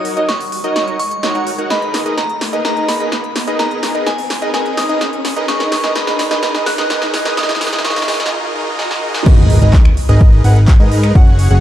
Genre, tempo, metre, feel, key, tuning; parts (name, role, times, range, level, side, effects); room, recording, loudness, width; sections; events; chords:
EDM, festival progressive house; 127 BPM; 4/4; straight; A4 = 440 Hz
glassy synth bell; melody; 0.0-8.3 s; G#5 to F#6; -22 LUFS; left 1 dB; chorus, digital delay
plucky unison lead; arpeggios; 0.0-11.6 s; D#5 to F#5; -23 LUFS; right 2 dB; lush chorus, cassette tape, sidechain pumping, digital delay
supersaw chords; riff; 0.0-11.6 s; C#4 to F#5; -20 LUFS; equal; sidechain pumping, low-pass filter, digital delay
riser and impact; sound effects; 0.0-11.2 s; -23 LUFS; equal
big-room dance drum kit; drums; 0.1-11.6 s; crash cymbal, finger snaps, handclaps, hi-hat, ride cymbal, snare drum; -21 LUFS; equal; high-pass filter on snare, high-pass filter on hats, high-pass filter on cymbals, high-pass filter on room
fat analog bass; bass; 9.3-11.6 s; F#1 to G#2; -11 LUFS; equal; sidechain pumping
electronic kick drum; drums; 9.3-11.2 s; -8 LUFS; equal
light reverb, digital ambience; dark, warm production, high-pass filter; -12 LUFS; side -12 dB against mid
0.0-9.3 A section; 9.3-11.6 B section
build-up 0.0-9.3; drum fill 0.0-8.3, 8.8-9.3; riser 0.0-9.3; filter sweep on supersaw synth 0.0-9.3; filter sweep on digital synth lead 0.0-9.3; filter sweep 0.0-9.3; break 8.3-9.3; drop 9.3-11.6; impact 9.3-11.2
0.0 D#m7; 1.7 G#madd9/D#; 7.4 D#5; 9.3 G#madd9